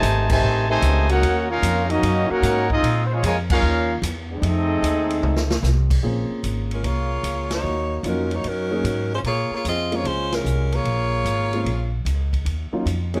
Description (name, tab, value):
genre	jazz, big band swing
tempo	150 BPM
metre	4/4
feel	swing 67% on 8ths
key	Bb minor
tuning	A4 = 440 Hz
part	clear trumpet section	melody	0.0-5.6 s	Bb3 to A5	-26 LUFS	equal	none
part	mellow trombone section	second line	0.0-5.6 s	C3 to Gb4	-25 LUFS	equal	none
part	upright bass	bass	0.0-13.2 s	G#1 to Bb2	-25 LUFS	equal	none
part	swinging big-band drum kit	drums	0.0-13.2 s	crash cymbal, hi-hat, kick drum, ride cymbal, snare drum, toms	-31 LUFS	equal	none
part	warm grand piano	accompaniment	6.0-13.2 s	Gb3 to Ab4	-29 LUFS	equal	none
part	clear saxophone section	melody	6.7-13.2 s	Gb3 to Eb5	-26 LUFS	equal	none
room	light reverb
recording	none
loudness	-22 LUFS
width	mono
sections	0.0-6.0 A section; 6.0-13.2 B section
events	band accent 0.2, 3.4, 7.4, 10.3; drum fill 5.2-5.6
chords	0.0 F7#9 (rootless); 1.2 Ebm7; 2.8 Bbm7; 3.6 Eb5; 4.4 F7#9; 6.0 Bbm7; 7.6 Ebm7; 9.2 Bbm7; 12.5 Ebm7